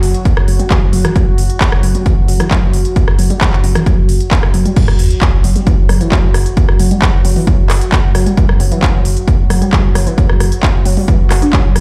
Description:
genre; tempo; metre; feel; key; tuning
driving peak-time techno; 133 BPM; 4/4; straight; unclear; A4 = 440 Hz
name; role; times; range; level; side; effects
saturated sub bass; bass; 0.0-11.8 s; F#1; -17 LUFS; equal; tube saturation, sidechain pumping, low-pass filter
deep dark ambient pad; drone; 0.0-11.8 s; F#3 to F#4; -26 LUFS; equal; chorus, built-in reverb, sidechain pumping
techno drum kit; drums; 0.0-11.8 s; crash cymbal, handclaps, hi-hat, rim click; -22 LUFS; equal; sidechain pumping on hats, sidechain pumping on cymbals
electronic kick drum; drums; 0.3-11.6 s; none; -15 LUFS; equal; none
warbly dusty pluck; riff; 0.5-11.6 s; E3 to F#4; -21 LUFS; equal; overdrive, analog chorus, sidechain pumping, delay
sub drop; sound effects; 4.8-6.6 s; none; -22 LUFS; equal; none
room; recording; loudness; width
light reverb, digital ambience; played on a big sound system in a bare room, large studio reverb; -12 LUFS; mono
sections
0.0-4.8 A section; 4.8-11.8 B section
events
drop 4.8-11.8; impact 4.8-6.6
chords
0.0 N.C.; 4.8 F#5

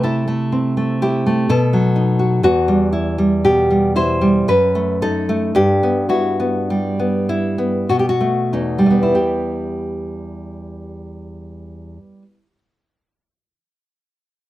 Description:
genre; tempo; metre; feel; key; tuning
romantic piece for solo classical guitar; 45-64 BPM; 3/4; rubato; E minor; A4 = 440 Hz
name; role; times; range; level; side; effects
nylon-string guitar; solo; 0.0-12.6 s; E2 to C5; -15 LUFS; equal; none
room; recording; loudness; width
light reverb; none; -15 LUFS; side -15 dB against mid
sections
0.0-9.1 A section; 9.1-12.7 B section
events
slowing down 1.0-9.1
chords
0.0 Am/C; 1.5 B7; 2.4 Em; 4.5 B7/F#; 5.5 Em/G; 7.9 B7; 9.1 Em

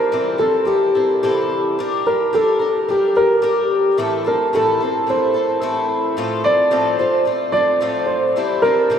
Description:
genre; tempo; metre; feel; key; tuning
folk; 109 BPM; 4/4; straight; G dorian; A4 = 441 Hz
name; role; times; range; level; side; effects
dark upright piano; melody; 0.0-9.0 s; G4 to D5; -17 LUFS; equal; none
picked twelve-string acoustic guitar; accompaniment; 0.0-9.0 s; A2 to Bb4; -20 LUFS; left 2 dB; none
room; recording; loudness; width
wet cathedral reverb, RT60 6.4 s; in a vast, echoing space; -15 LUFS; side -8 dB against mid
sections
0.0-9.0 A section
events
none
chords
0.0 C6; 1.8 Gm; 4.0 Am; 6.2 F/A; 8.4 C6

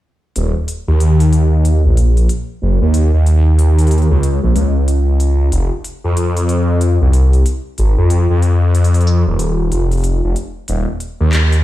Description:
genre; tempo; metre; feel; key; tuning
glitch hop; 93 BPM; 4/4; swing 62% on 16ths; unclear; A4 = 440 Hz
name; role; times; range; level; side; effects
phased detuned saw bass; bass; 0.4-11.6 s; Eb1 to F2; -11 LUFS; equal; phaser, overdrive
drum and bass drum kit; drums; 0.4-11.6 s; handclaps, hi-hat; -26 LUFS; left 1 dB; studio reverb
room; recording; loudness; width
digital ambience; played on a big sound system in a bare room, large studio reverb; -12 LUFS; side -15 dB against mid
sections
0.4-11.6 A section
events
none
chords
none

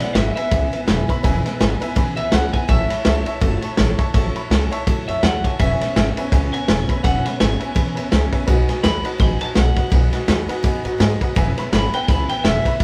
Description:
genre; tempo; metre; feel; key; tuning
rockabilly; 166 BPM; 4/4; swing 58% on 8ths; E major; A4 = 440 Hz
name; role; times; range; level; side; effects
electric guitar through a small old amp; melody; 0.0-12.8 s; D5 to B5; -26 LUFS; equal; none
honky-tonk upright piano; accompaniment; 0.0-12.8 s; B4 to B5; -32 LUFS; equal; none
picked steel-string acoustic guitar; accompaniment; 0.0-12.8 s; C#3 to C#5; -30 LUFS; equal; none
upright bass; bass; 0.0-12.8 s; E1 to A2; -24 LUFS; equal; none
vintage drum kit; drums; 0.0-12.8 s; kick drum, ride cymbal, snare drum; -21 LUFS; equal; none
room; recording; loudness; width
moderate large studio reverb, RT60 0.9 s; band playing live in one room; -19 LUFS; mono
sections
0.0-12.8 A section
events
none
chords
0.0 E6; 2.7 A6; 5.6 E6; 8.5 B6; 11.4 E6

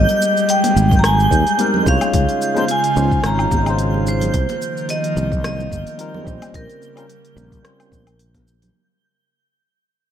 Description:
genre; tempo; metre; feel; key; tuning
sunset chillout; 109 BPM; 4/4; swing 55% on 16ths; Bb dorian; A4 = 439 Hz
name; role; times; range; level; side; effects
vibraphone with hard mallets; melody; 0.0-8.2 s; Bb4 to Bb5; -21 LUFS; right 1 dB; digital delay
airy breathy pad; sustained chords; 0.0-8.7 s; Db3 to F4; -23 LUFS; equal; chorus
sustaining fretless electric bass; bass; 0.0-8.7 s; G1 to Eb2; -19 LUFS; equal; none
twinkling granular texture; texture; 0.0-8.8 s; G6; -26 LUFS; right 2 dB; built-in reverb
smooth R&B drum kit; drums; 0.1-8.7 s; hi-hat, rim click, shaker, woodblock; -27 LUFS; left 1 dB; none
congas; percussion; 0.1-8.7 s; none; -27 LUFS; right 1 dB; none
electronic kick drum; drums; 0.9-8.4 s; none; -19 LUFS; equal; none
bright tine electric piano; accompaniment; 1.6-8.0 s; G3 to Db5; -24 LUFS; left 1 dB; auto-pan, digital delay
room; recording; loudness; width
light reverb; none; -14 LUFS; side -9 dB against mid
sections
0.0-8.7 A section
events
fade-out 0.0-8.7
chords
0.0 Abmaj7; 2.1 Dbmaj7; 4.3 F7sus4/C; 6.3 Bbm69

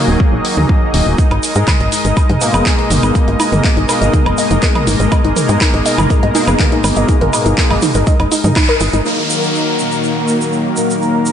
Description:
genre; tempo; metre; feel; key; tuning
melodic techno; 122 BPM; 4/4; straight; unclear; A4 = 440 Hz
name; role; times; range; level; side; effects
lush unison pad; sustained chords; 0.0-11.3 s; Eb3 to Eb5; -18 LUFS; equal; chorus, sidechain pumping
sync-sweep polysynth; stabs; 0.0-11.3 s; Cb3 to Bb3; -19 LUFS; left 2 dB; chorus, sidechain pumping, analog delay
warbly dusty pluck; arpeggios; 0.1-9.0 s; Eb4 to Eb5; -20 LUFS; equal; chorus, sidechain pumping, analog delay
tight sequencer bass; bass; 0.1-9.0 s; Eb1 to Ab2; -15 LUFS; equal; sidechain pumping
electronic kick drum; drums; 0.2-8.7 s; none; -14 LUFS; equal; small room reverb
deep house drum kit; drums; 0.4-9.0 s; handclaps, hi-hat, toms, woodblock; -19 LUFS; right 1 dB; sidechain pumping on hats, low-pass filter on hats, small room reverb, sidechain pumping on toms, low-pass filter on toms, sidechain pumping on perc, low-pass filter on perc, low-pass filter on snare
tube shaker; percussion; 1.2-11.3 s; none; -24 LUFS; right 3 dB; none
wide unison lead; melody; 9.1-11.3 s; Bb3 to Eb4; -19 LUFS; left 1 dB; wide subtle chorus, sidechain pumping, tape echo
downlifter; sound effects; 9.1-11.3 s; none; -21 LUFS; left 1 dB; none
room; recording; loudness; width
moderate lush hall reverb, RT60 2.5 s; dreamy mix soaked in reverb, nothing above 10.4 kHz; -11 LUFS; side -9 dB against mid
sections
0.0-9.1 A section; 9.1-11.3 B section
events
filter sweep on synth arpeggio sound 0.0-9.1; band accent 8.6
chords
0.0 Ebm; 1.2 Abmadd9; 9.1 Ebm

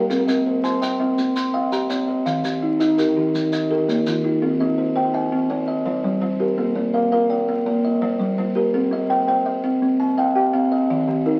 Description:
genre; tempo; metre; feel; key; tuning
southern african traditional, mbira-style interlocking cycle; 111 BPM (dotted quarters); 12/8; straight; C equiheptatonic; A4 = 438 Hz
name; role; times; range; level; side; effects
buzzing kalimba; arpeggios; 0.0-11.4 s; Eb3+43c to C6; -22 LUFS; equal; none
buzzing kalimba; arpeggios; 0.0-11.4 s; Eb3+43c to Bb5+29c; -26 LUFS; equal; none
maracas; percussion; 0.1-4.2 s; none; -35 LUFS; equal; none
room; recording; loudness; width
moderate studio reverb, RT60 0.7 s; very old 78 rpm record, vinyl crackle; -21 LUFS; mono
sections
0.0-4.4 A section; 4.4-11.4 B section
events
none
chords
0.1 Cm; 2.3 Eb; 4.4 Cm; 5.5 Gm; 6.6 Bb; 7.7 Gm; 8.7 Cm

